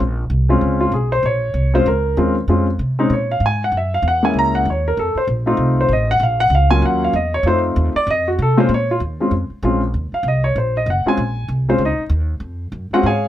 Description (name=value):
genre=jazz piano trio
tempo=193 BPM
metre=4/4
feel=swing 61% on 8ths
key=Bb minor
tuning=A4 = 440 Hz
part: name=upright bass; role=bass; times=0.0-13.3 s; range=Gb1 to C3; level=-19 LUFS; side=equal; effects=none
part: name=warm baby grand piano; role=melody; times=0.5-13.2 s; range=Bb2 to Bb5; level=-16 LUFS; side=left 1 dB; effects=none
room=light reverb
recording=none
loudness=-15 LUFS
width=side -12 dB against mid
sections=0.0-8.7 A section; 8.7-13.3 A section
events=grand piano solo 0.0-13.3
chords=0.0 Bbm7; 3.7 Gb7; 5.0 F7; 6.2 Bbm; 6.8 Ebm7; 7.5 F7; 8.7 Bbm7; 9.9 Ebm; 11.2 Bbm7